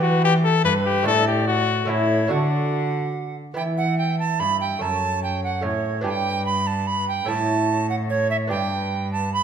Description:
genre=classical, renaissance-style consort dance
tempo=145 BPM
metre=3/4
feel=straight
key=unclear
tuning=A4 = 440 Hz
part: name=clear cornet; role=melody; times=0.0-9.4 s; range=D4 to E5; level=-26 LUFS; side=left 7 dB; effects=none
part: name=bright tenor recorder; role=second line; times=0.0-9.4 s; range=B4 to B5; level=-25 LUFS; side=right 5 dB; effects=none
part: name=lute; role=accompaniment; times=0.0-9.4 s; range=F#2 to G4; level=-27 LUFS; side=right 2 dB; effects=none
part: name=rich cello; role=bass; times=0.0-9.4 s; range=F#2 to E3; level=-25 LUFS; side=right 1 dB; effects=none
room=wet recital hall reverb, RT60 1.4 s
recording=none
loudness=-20 LUFS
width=side -8 dB against mid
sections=0.0-3.6 A section; 3.6-9.4 B section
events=none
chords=0.0 Em; 1.1 Asus4; 1.9 A; 2.3 D; 3.6 Em; 4.8 F#m; 6.0 G; 7.3 A; 8.5 G

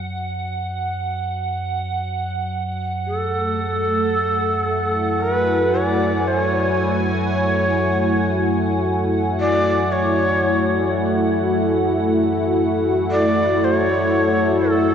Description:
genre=dark ambient drone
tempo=56 BPM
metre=4/4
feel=straight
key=F# minor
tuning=A4 = 440 Hz
part: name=deep rumbling drone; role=drone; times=0.0-14.9 s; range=F#2 to F#3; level=-26 LUFS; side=equal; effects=built-in reverb
part: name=icy glass pad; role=texture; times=0.0-14.9 s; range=F#5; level=-28 LUFS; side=right 4 dB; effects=chorus, built-in reverb
part: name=breathy reedy shakuhachi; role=melody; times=3.1-14.9 s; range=A4 to D5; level=-21 LUFS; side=equal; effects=diffuse ambient delay
part: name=sweeping resonant pad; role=sustained chords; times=3.1-14.9 s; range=A3 to G#5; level=-20 LUFS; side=left 1 dB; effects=chorus
room=wet cathedral reverb, RT60 5.4 s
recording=nothing above 7.7 kHz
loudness=-17 LUFS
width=side -8 dB against mid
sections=0.0-14.9 A section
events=fade-in on synth drone 0.0-14.9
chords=0.0 F#madd9

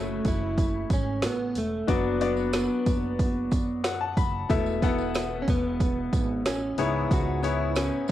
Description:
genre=piano-driven pop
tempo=92 BPM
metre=4/4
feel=straight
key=F# minor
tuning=A4 = 438 Hz
part: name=direct-recorded clean electric guitar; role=melody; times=0.0-8.1 s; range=A3 to F#4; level=-29 LUFS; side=right 2 dB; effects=analog chorus, cassette tape
part: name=clear baby grand piano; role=accompaniment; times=0.0-8.1 s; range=G#2 to B5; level=-30 LUFS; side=left 7 dB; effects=cassette tape
part: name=upright bass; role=bass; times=0.0-8.1 s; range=E1 to F#2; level=-32 LUFS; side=right 1 dB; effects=none
part: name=impact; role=sound effects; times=0.2-1.9 s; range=none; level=barely audible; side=none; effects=none
part: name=deep house drum kit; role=drums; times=0.2-8.1 s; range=hi-hat, kick drum, snare drum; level=-27 LUFS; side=right 1 dB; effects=cassette tape
part: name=tambourine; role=percussion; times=0.3-8.1 s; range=none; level=-46 LUFS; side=right 13 dB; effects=none
room=light reverb, digital ambience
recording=home recording on cassette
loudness=-24 LUFS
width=side -13 dB against mid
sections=0.0-8.1 A section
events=impact 0.0-1.9; grand piano fill 3.5-4.5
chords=0.0 F#m7; 1.9 Bm/F#; 4.5 Esus4; 6.8 C#m7

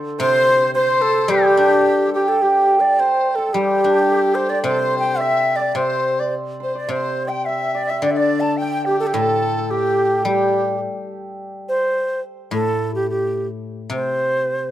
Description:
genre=chinese traditional, Chinese chamber ensemble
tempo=107 BPM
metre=2/4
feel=rubato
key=G zhi mode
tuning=A4 = 440 Hz
part: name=hammered dulcimer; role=second line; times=0.0-13.4 s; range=G4 to A5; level=-21 LUFS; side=right 3 dB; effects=none
part: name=guzheng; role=accompaniment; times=0.0-14.7 s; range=A2 to D4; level=-24 LUFS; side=left 4 dB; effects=none
part: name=breathy bright xiao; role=melody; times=0.2-14.7 s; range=G4 to A5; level=-19 LUFS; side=right 1 dB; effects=none
part: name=bright reedy large dizi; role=second line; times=0.2-10.8 s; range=G4 to G5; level=-24 LUFS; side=left 4 dB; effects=none
room=moderate plate reverb, RT60 2.9 s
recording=none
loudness=-16 LUFS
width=side -12 dB against mid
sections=0.0-2.4 A section; 2.4-11.4 B section; 11.4-14.7 C section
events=none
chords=none

